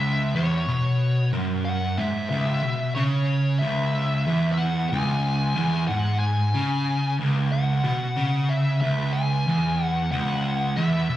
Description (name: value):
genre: metal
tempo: 92 BPM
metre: 4/4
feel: straight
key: C# minor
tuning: A4 = 440 Hz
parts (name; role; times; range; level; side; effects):
- fuzz lead guitar; melody; 0.0-11.2 s; C#5 to G#5; -28 LUFS; left 1 dB; wah, distortion, tape echo
- fuzz guitar; riff; 0.0-11.2 s; C#2 to C#3; -22 LUFS; equal; distortion, slapback echo
room: wet club reverb, RT60 0.6 s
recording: live gig heard through the venue's PA, club reverb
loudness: -21 LUFS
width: side -13 dB against mid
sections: 0.0-11.2 A section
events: none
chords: 0.0 C#m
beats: 0.36 1.01 1.66 | 2.31 2.96 3.61 4.26 | 4.91 5.56 6.21 6.86 | 7.51 8.17 8.82 9.47 | 10.12 10.77